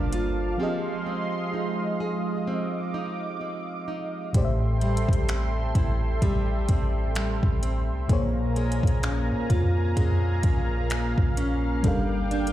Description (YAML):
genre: contemporary R&B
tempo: 64 BPM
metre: 4/4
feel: swing 58% on 16ths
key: A phrygian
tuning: A4 = 443 Hz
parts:
  - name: FM electric piano with auto-pan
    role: accompaniment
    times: 0.0-12.5 s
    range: A2 to F5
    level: -32 LUFS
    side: left 2 dB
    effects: none
  - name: lush unison pad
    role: sustained chords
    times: 0.0-12.5 s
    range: Ab3 to D6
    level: -32 LUFS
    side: right 1 dB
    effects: chorus, sidechain pumping
  - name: nylon-string guitar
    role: arpeggios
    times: 0.0-12.5 s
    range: A2 to Bb4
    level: -31 LUFS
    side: right 2 dB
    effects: digital delay
  - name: clean 808-style bass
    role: bass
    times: 0.0-12.5 s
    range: G1 to Bb2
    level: -26 LUFS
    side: equal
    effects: none
  - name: smooth R&B drum kit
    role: drums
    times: 0.1-12.5 s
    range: finger snaps, hi-hat, kick drum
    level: -25 LUFS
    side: equal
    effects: none
room: little or no reverb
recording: played on a big sound system in a bare room, large studio reverb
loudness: -23 LUFS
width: side -13 dB against mid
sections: 0.0-12.5 A section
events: break 0.6-4.3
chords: 0.0 Gm7; 0.6 Fm7; 4.3 Am7; 8.1 Bbm7; 11.8 Gm7